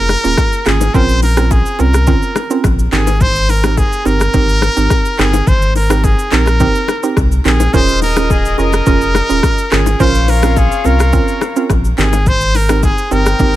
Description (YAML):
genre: afrobeats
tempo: 106 BPM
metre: 4/4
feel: straight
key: Ab major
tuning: A4 = 438 Hz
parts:
  - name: bright trumpet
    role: melody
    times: 0.0-13.6 s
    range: Ab4 to C5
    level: -17 LUFS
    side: equal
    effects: digital delay
  - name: warm sub bass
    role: bass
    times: 0.0-13.6 s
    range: Eb1 to C2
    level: -14 LUFS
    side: equal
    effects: none
  - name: afro-pop drum kit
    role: drums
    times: 0.1-13.5 s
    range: handclaps, hi-hat, kick drum, rim click, shaker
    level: -16 LUFS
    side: equal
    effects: none
  - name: bongos and congas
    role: percussion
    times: 0.1-13.5 s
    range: none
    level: -24 LUFS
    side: left 9 dB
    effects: none
  - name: hollow square pluck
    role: accompaniment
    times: 0.2-13.6 s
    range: Bb3 to C5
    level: -18 LUFS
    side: right 6 dB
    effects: chorus
  - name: clear horn section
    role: second line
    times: 7.7-13.6 s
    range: F4 to G5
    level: -22 LUFS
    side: left 7 dB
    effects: digital delay
room: studio reverb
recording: none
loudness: -10 LUFS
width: side -14 dB against mid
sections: 0.0-13.6 A section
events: none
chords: 0.0 Eb7sus4 (rootless); 0.9 Bbmadd9; 2.9 Abmaj7; 7.7 Eb7sus4; 10.0 Bbmadd9; 12.0 Abmaj7